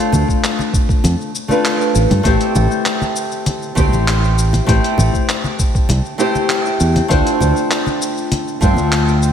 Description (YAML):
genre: sunset chillout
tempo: 99 BPM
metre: 4/4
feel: straight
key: A minor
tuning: A4 = 437 Hz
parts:
  - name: nylon-string guitar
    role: accompaniment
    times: 0.0-9.3 s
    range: A3 to C5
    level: -17 LUFS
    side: left 1 dB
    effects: auto-pan, ping-pong delay
  - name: dusty soul sampler-style drum kit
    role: drums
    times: 0.0-9.3 s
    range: handclaps, hi-hat, shaker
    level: -23 LUFS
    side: left 1 dB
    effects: none
  - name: fretless electric bass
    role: bass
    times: 0.1-9.3 s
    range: A1 to G2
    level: -15 LUFS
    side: equal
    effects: none
  - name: congas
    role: percussion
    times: 0.1-8.9 s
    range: none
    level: -24 LUFS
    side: left 1 dB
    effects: none
  - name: electronic kick drum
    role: drums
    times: 0.3-8.7 s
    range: none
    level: -17 LUFS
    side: right 1 dB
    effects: none
room: moderate lush hall reverb, RT60 2.5 s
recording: dreamy mix soaked in reverb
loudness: -13 LUFS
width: side -8 dB against mid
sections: 0.0-9.3 A section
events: none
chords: 0.0 Dm7; 2.3 Am7; 7.1 Dm7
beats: 0.44 1.04 1.65 | 2.26 2.86 3.47 4.08 | 4.68 5.29 5.89 6.50 | 7.11 7.71 8.32 8.92